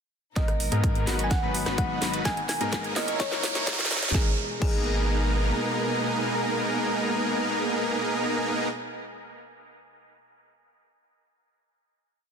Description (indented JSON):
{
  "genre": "EDM, festival progressive house",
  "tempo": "127 BPM",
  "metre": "4/4",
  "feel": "straight",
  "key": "G# minor",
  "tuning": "A4 = 438 Hz",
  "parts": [
    { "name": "thumb-piano-like synth pluck", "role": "melody", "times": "0.4-9.2 s", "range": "G#4 to G#5", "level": "-34 LUFS", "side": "right 1 dB", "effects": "chorus, dub echo" },
    { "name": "bright grand piano", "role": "accompaniment", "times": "0.4-9.2 s", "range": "G#2 to B4", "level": "-36 LUFS", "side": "left 6 dB", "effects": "sidechain pumping, dub echo" },
    { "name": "dark studio string section", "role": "sustained chords", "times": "0.4-8.7 s", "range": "B2 to A#4", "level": "-35 LUFS", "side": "equal", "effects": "sidechain pumping" },
    { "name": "big supersaw lead", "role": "riff", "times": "0.4-8.7 s", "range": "F#3 to C#5", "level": "-28 LUFS", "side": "right 1 dB", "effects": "cassette tape, sidechain pumping, low-pass filter, dub echo" },
    { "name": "saturated sub bass", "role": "bass", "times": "0.4-5.5 s", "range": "G#1 to G#2", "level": "-30 LUFS", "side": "equal", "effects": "sidechain pumping" },
    { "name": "electronic kick drum", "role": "drums", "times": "0.4-4.8 s", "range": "none", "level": "-26 LUFS", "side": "equal", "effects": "overdrive" },
    { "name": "house drum kit", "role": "drums", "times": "0.4-4.8 s", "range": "crash cymbal, hi-hat, rim click, snare drum", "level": "-32 LUFS", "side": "equal", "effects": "none" },
    { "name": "riser", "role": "sound effects", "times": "1.9-4.1 s", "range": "none", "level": "-33 LUFS", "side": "right 4 dB", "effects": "none" }
  ],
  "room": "light reverb",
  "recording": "dense, heavily limited modern master, high-pass filter",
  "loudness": "-24 LUFS",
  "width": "side -6 dB against mid",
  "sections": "0.4-4.1 build; 4.1-7.9 final chord",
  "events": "build-up 0.4-4.1; drum fill 0.4-4.1; filter sweep on supersaw synth 0.4-4.1; filter sweep 0.4-4.1; riser 1.9-4.1",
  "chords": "0.4 G#madd9; 1.3 B/G#; 2.3 G#madd9; 3.2 A#dim/G#; 4.1 G#madd9"
}